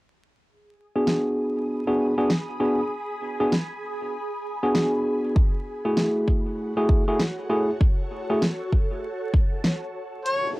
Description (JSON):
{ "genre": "glitch hop", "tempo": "98 BPM", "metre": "4/4", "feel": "swing 61% on 16ths", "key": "F# minor", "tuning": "A4 = 440 Hz", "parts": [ { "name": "ethereal airy pad", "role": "texture", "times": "1.4-10.6 s", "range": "F#4 to D#6", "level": "-33 LUFS", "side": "right 1 dB", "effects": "ensemble chorus, built-in reverb, phaser, sidechain pumping" }, { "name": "tine electric piano", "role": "stabs", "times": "1.0-8.4 s", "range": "A3 to G#4", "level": "-23 LUFS", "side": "equal", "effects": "sidechain pumping, low-pass filter, tape echo" }, { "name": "pop drum kit", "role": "drums", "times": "1.1-10.4 s", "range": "hi-hat, snare drum", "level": "-24 LUFS", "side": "equal", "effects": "cassette tape" }, { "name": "electronic kick drum", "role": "drums", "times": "5.4-9.5 s", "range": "none", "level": "-20 LUFS", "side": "equal", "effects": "cassette tape" }, { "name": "mellow harmonica", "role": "melody", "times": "10.3-10.5 s", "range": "C#5", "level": "-23 LUFS", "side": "left 1 dB", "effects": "cassette tape" }, { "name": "riser", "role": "sound effects", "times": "10.3-10.6 s", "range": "none", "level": "-35 LUFS", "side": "left 2 dB", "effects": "none" } ], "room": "moderate booth ambience, RT60 0.3 s", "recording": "home recording on cassette, vinyl crackle", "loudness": "-22 LUFS", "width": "side -20 dB against mid", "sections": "0.5-10.3 A section", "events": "break 9.6-10.3; riser 10.3", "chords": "0.5 G#m7b5; 5.4 F#m9" }